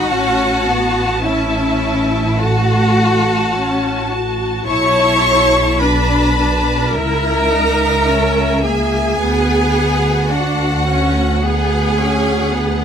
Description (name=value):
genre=classical, slow romantic movement for string orchestra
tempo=53 BPM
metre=4/4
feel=rubato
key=unclear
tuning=A4 = 439 Hz
part: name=warm studio violin section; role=melody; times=0.0-12.8 s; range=E5 to A5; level=-24 LUFS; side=left 1 dB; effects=none
part: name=rich studio violin section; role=second line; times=0.0-12.8 s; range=E5 to C#6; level=-21 LUFS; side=left 1 dB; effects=none
part: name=clear studio viola section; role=accompaniment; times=0.0-12.8 s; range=A3 to F#4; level=-20 LUFS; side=left 1 dB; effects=none
part: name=clear studio cello section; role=bass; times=0.0-12.8 s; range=E4 to C#5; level=-18 LUFS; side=equal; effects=none
part: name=rich studio double bass section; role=bass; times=0.0-12.8 s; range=A1 to D2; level=-19 LUFS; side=right 1 dB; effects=none
room=little or no reverb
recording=close, detailed microphones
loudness=-13 LUFS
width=side -8 dB against mid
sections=0.0-12.8 A section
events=none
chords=0.1 F#m/A; 4.7 Bm11; 7.0 A#dim/C#; 9.2 Bm/D